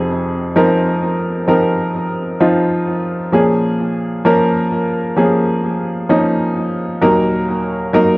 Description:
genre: pop.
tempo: 65 BPM.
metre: 4/4.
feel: straight.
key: Bb minor.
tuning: A4 = 440 Hz.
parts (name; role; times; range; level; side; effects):
clear upright piano; solo; 0.0-8.2 s; Eb2 to Bb4; -13 LUFS; equal; cassette tape, analog delay.
room: moderate studio reverb, RT60 0.6 s.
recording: home recording on cassette.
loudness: -13 LUFS.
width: side -25 dB against mid.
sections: 0.0-8.2 A section.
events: none.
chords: 0.0 Fm7; 3.3 Bbm7; 7.0 Ebm.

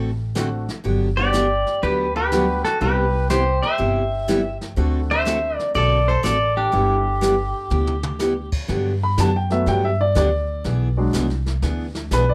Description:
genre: country, western swing.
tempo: 122 BPM.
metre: 4/4.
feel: swing 67% on 8ths.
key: G major.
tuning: A4 = 440 Hz.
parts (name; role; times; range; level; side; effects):
koto; second line; 0.0-9.0 s; D4 to C5; -32 LUFS; equal; none.
picked steel-string acoustic guitar; accompaniment; 0.0-12.2 s; C3 to A4; -26 LUFS; equal; none.
upright bass; bass; 0.0-12.3 s; G1 to G2; -25 LUFS; equal; none.
clear upright piano; accompaniment; 0.4-12.3 s; F#3 to B5; -27 LUFS; equal; none.
jazz brush drum kit; drums; 0.4-12.3 s; brushed snare drum, crash cymbal, hi-hat, kick drum, snare drum, toms; -32 LUFS; equal; none.
pedal steel guitar; melody; 1.2-8.5 s; G4 to E5; -24 LUFS; equal; none.
room: moderate club reverb, RT60 0.6 s.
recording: none.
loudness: -20 LUFS.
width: mono.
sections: 0.0-8.7 A section; 8.7-12.3 B section.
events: drum fill 7.7-8.2; upright piano solo 8.7-12.3.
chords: 0.0 D7; 0.8 Gmaj7; 2.8 Cmaj7; 4.8 D7; 6.7 G6; 8.7 Gmaj7; 10.6 E7.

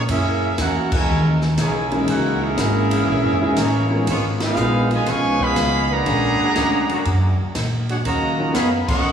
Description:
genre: jazz, big band swing.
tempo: 121 BPM.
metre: 4/4.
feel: swing 68% on 8ths.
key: unclear.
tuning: A4 = 440 Hz.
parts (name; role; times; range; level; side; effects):
clear trumpet section; melody; 0.0-9.1 s; Bb3 to Db6; -22 LUFS; right 1 dB; none.
clear trombone section; sustained chords; 0.0-8.3 s; Fb3 to Cb5; -30 LUFS; left 1 dB; none.
upright bass; bass; 0.0-9.1 s; Fb1 to Bb2; -22 LUFS; equal; none.
warm trombone section; second line; 0.1-9.1 s; Cb3 to Gb4; -24 LUFS; right 2 dB; none.
swinging big-band drum kit; drums; 0.1-9.0 s; crash cymbal, hi-hat, kick drum, ride cymbal, snare drum; -27 LUFS; equal; none.
warm grand piano; accompaniment; 1.9-8.5 s; Gb3 to Bb4; -25 LUFS; left 2 dB; none.
room: wet church reverb, RT60 2.5 s.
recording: recorded in a church or concert hall, small room ambience.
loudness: -17 LUFS.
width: side -8 dB against mid.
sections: 0.0-9.1 A section.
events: band accent 0.8, 4.3, 8.8.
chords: 0.1 Gb13; 4.1 Db13; 6.1 Bb7alt; 8.0 Ebm7.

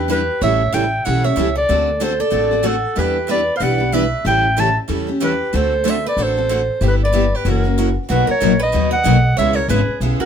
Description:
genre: acoustic string swing (jazz manouche).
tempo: 188 BPM.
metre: 4/4.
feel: swing 59% on 8ths.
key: unclear.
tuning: A4 = 440 Hz.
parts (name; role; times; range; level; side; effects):
warm clarinet; melody; 0.0-10.3 s; A4 to A5; -19 LUFS; right 1 dB; none.
picked acoustic archtop guitar; second line; 0.0-10.3 s; F#4 to E5; -24 LUFS; right 3 dB; none.
picked steel-string acoustic guitar; accompaniment; 0.0-10.2 s; B2 to B4; -22 LUFS; left 5 dB; none.
upright bass; bass; 0.0-10.2 s; F#1 to E2; -20 LUFS; equal; none.
picked steel-string acoustic guitar; accompaniment; 0.1-10.2 s; B2 to B4; -25 LUFS; right 8 dB; none.
room: light reverb.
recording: minimal, uncompressed stereo recording.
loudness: -14 LUFS.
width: side -8 dB against mid.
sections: 0.0-8.1 A section; 8.1-10.3 B section.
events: none.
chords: 0.4 A7; 1.7 D7; 3.0 Em7; 4.3 A9; 5.5 D7; 6.8 G6; 7.5 F#7; 8.1 Bmaj7; 9.4 C#m7.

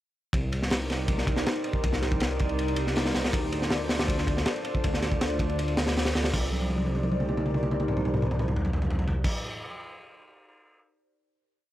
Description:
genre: drum and bass, jungle.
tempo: 160 BPM.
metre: 4/4.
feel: straight.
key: C dorian.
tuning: A4 = 441 Hz.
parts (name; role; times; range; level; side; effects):
warbly tape-like pad; sustained chords; 0.6-9.3 s; D4 to D5; -32 LUFS; left 1 dB; chorus, built-in reverb.
dark detuned saw bass; bass; 0.3-9.3 s; C2 to D2; -30 LUFS; equal; none.
crunchy breakbeat drum kit; drums; 0.3-10.8 s; crash cymbal, hi-hat, kick drum, ride cymbal, snare drum, toms; -27 LUFS; equal; none.
room: small room ambience.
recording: dry, gritty hardware recording.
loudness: -25 LUFS.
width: side -14 dB against mid.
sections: 0.3-6.3 drop; 6.3-9.3 final chord.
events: drop 0.3-6.3; drum fill 6.5-9.2.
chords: 0.3 Cm9; 3.3 Dm7; 6.3 Cm9.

